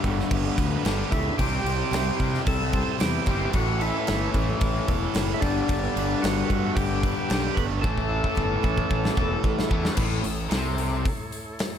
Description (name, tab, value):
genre	classic rock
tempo	112 BPM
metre	4/4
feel	straight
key	unclear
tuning	A4 = 438 Hz
part	picked steel-string acoustic guitar	accompaniment	0.0-10.0 s	A2 to A4	-34 LUFS	right 7 dB	none
part	tonewheel organ	sustained chords	0.0-11.8 s	G3 to D5	-40 LUFS	equal	none
part	cranked stack guitar	riff	0.0-11.0 s	A2 to C5	-32 LUFS	right 12 dB	overdrive
part	overdriven electric guitar	riff	0.0-11.1 s	G2 to C4	-30 LUFS	left 11 dB	spring reverb
part	fuzz fingered electric bass	bass	0.0-11.0 s	E1 to C3	-28 LUFS	equal	overdrive
part	big rock drum kit	drums	0.0-11.7 s	crash cymbal, hi-hat, kick drum, snare drum	-27 LUFS	equal	none
part	overdriven tonewheel organ	melody	1.1-9.4 s	D4 to B4	-30 LUFS	right 1 dB	slow rotary speaker, analog delay
room	small room reverb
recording	none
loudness	-22 LUFS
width	side -9 dB against mid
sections	0.0-10.0 A section; 10.0-11.8 B section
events	drum fill 7.8-10.0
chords	0.0 Gadd9; 1.4 C; 3.5 A; 5.4 Gadd9; 7.8 A